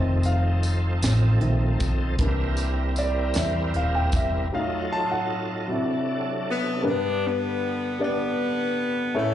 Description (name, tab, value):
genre	slow gospel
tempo	52 BPM (dotted quarters)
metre	6/8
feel	straight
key	unclear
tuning	A4 = 442 Hz
part	warm concert grand piano	accompaniment	0.0-9.3 s	G2 to A5	-27 LUFS	left 2 dB	slapback echo
part	bright tonewheel organ	sustained chords	0.0-6.8 s	C3 to Bb4	-30 LUFS	right 2 dB	fast rotary speaker, overdrive, chorus vibrato
part	hollow-body short-scale fingered electric bass	bass	0.0-4.5 s	Eb1 to E2	-23 LUFS	equal	none
part	crisp fusion drum kit	drums	0.2-4.3 s	hi-hat, kick drum, snare drum	-28 LUFS	equal	none
part	tambourine	percussion	0.2-4.5 s	none	-36 LUFS	left 2 dB	none
part	bright saxophone section	melody	6.5-9.3 s	C#3 to D4	-26 LUFS	left 1 dB	none
room	small room ambience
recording	live gig heard through the venue's PA, club reverb, nothing above 11.0 kHz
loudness	-22 LUFS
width	side -11 dB against mid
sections	0.0-6.8 A section; 6.8-9.3 B section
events	grand piano solo 0.0-6.8; break 4.5-6.8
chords	0.0 F7; 2.2 C7; 4.5 F7b9; 5.7 D7; 6.8 G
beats	1.03 | 2.19 3.35 | 4.51 5.67 | 6.84 8.00 | 9.16